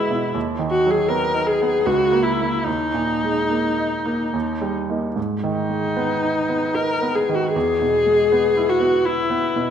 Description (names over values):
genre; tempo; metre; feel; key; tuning
classical, romantic duo for viola and grand piano; 71-83 BPM; 3/4; rubato; G# minor; A4 = 443 Hz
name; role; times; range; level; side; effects
clear viola; melody; 0.0-9.7 s; D#4 to A#4; -20 LUFS; left 2 dB; none
bright baby grand piano; accompaniment; 0.0-9.7 s; C#2 to E4; -22 LUFS; right 2 dB; none
room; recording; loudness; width
moderate scoring stage reverb, RT60 1.6 s; minimal, uncompressed stereo recording; -18 LUFS; side -8 dB against mid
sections
0.0-9.7 A section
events
none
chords
0.4 B/D#; 1.9 A#dim/C#; 2.7 D#sus4; 4.3 D#; 5.2 G#m; 7.6 E